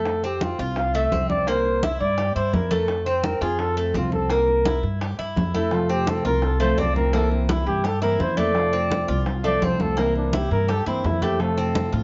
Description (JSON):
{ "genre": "latin, Cuban son and guajira", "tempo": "169 BPM", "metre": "4/4", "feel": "straight", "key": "F major", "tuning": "A4 = 440 Hz", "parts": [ { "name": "trumpet with bucket mute", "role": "melody", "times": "0.0-11.9 s", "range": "C4 to F5", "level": "-27 LUFS", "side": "equal", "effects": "plate reverb" }, { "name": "Cuban tres", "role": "arpeggios", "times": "0.0-12.0 s", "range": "A3 to G4", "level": "-29 LUFS", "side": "equal", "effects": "none" }, { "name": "upright bass", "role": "bass", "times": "0.0-12.0 s", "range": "C2 to A2", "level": "-28 LUFS", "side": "equal", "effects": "none" }, { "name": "bongos", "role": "percussion", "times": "0.1-12.0 s", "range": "none", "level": "-36 LUFS", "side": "equal", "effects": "none" }, { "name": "congas", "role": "percussion", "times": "0.1-12.0 s", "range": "none", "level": "-31 LUFS", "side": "equal", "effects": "none" }, { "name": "nylon-string guitar", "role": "accompaniment", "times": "5.7-12.0 s", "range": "C3 to F4", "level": "-30 LUFS", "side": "equal", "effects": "none" } ], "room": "moderate studio reverb, RT60 0.8 s", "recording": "worn, warbling old tape, cassette tape, warbly pitch drift, nothing above 7.6 kHz", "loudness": "-22 LUFS", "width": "mono", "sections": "0.0-12.0 A section", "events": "muted trumpet solo 0.0-12.0", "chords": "0.1 F; 1.5 C7; 2.9 F; 4.3 C7; 5.7 F; 7.1 C7; 8.6 F; 10.0 C7; 11.4 F" }